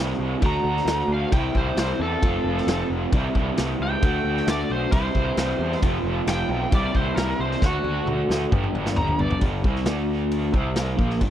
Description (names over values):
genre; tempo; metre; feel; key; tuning
classic rock; 133 BPM; 4/4; straight; unclear; A4 = 438 Hz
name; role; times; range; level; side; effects
raw garage guitar; riff; 0.0-11.3 s; F2 to G4; -25 LUFS; right 1 dB; overdrive, harmonic tremolo
fuzz picked electric bass; bass; 0.0-11.3 s; F1 to E2; -27 LUFS; equal; overdrive
vintage drum kit; drums; 0.4-11.3 s; crash cymbal, kick drum, snare drum, toms; -25 LUFS; equal; none
overdriven slide guitar; melody; 0.5-9.4 s; F#4 to Bb5; -28 LUFS; equal; none
room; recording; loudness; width
little or no reverb; none; -20 LUFS; side -11 dB against mid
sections
0.0-9.4 A section; 9.4-11.3 B section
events
electric slide guitar solo 0.0-9.4; drum fill 7.6-9.4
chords
0.4 D; 1.3 C; 2.2 F; 3.1 C; 4.0 D; 4.9 C; 5.8 F; 6.7 C; 7.6 D; 8.5 G; 9.4 G5; 9.9 D5; 10.5 C5